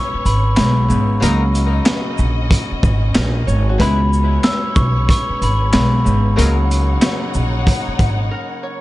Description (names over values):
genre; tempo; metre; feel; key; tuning
hip hop, boom-bap hip-hop; 93 BPM; 4/4; swing 63% on 16ths; unclear; A4 = 440 Hz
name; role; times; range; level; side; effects
glockenspiel with rubber mallets; melody; 0.0-6.0 s; B5 to E6; -24 LUFS; equal; high-pass filter, low-pass filter, ping-pong delay
Celtic harp; accompaniment; 0.0-8.8 s; C#2 to C#5; -23 LUFS; left 1 dB; cassette tape, high-pass filter, low-pass filter
warm studio string section; sustained chords; 0.0-8.8 s; C#4 to F#5; -28 LUFS; left 3 dB; high-pass filter, low-pass filter
upright bass; bass; 0.1-8.3 s; G#1 to C#2; -16 LUFS; equal; none
crunchy breakbeat drum kit; drums; 0.3-8.2 s; handclaps, hi-hat, kick drum, shaker, snare drum; -18 LUFS; equal; none
mellow horn section; stabs; 1.2-6.6 s; F#3 to B4; -28 LUFS; left 5 dB; high-pass filter, low-pass filter, ping-pong delay
room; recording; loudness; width
little or no reverb; nothing above 11.0 kHz; -14 LUFS; side -17 dB against mid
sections
0.0-8.8 A section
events
break 8.3-8.8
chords
0.0 C#m7; 1.2 D#m7; 3.8 C#m7; 6.4 D#m7